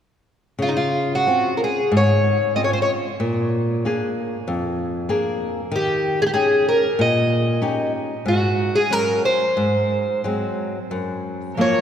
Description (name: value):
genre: fado-style ballad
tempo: 93 BPM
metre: 4/4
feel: uneven beats, rubato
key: Db major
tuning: A4 = 440 Hz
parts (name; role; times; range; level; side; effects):
- fingerpicked twelve-string acoustic guitar; melody; 0.6-11.8 s; Eb4 to Eb5; -20 LUFS; equal; none
- flamenco guitar; accompaniment; 0.6-11.8 s; F2 to G5; -22 LUFS; equal; none
- rich cello; second line; 11.6-11.8 s; Bb3; -21 LUFS; right 6 dB; none
room: wet cathedral reverb, RT60 4.1 s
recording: recorded in a church or concert hall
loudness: -18 LUFS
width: side -8 dB against mid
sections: 0.6-11.8 A section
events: none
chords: 0.6 Dbmaj7; 3.2 Bb7; 5.7 Eb7; 8.3 Ab7sus4; 9.6 Ab7; 10.9 Gbmaj7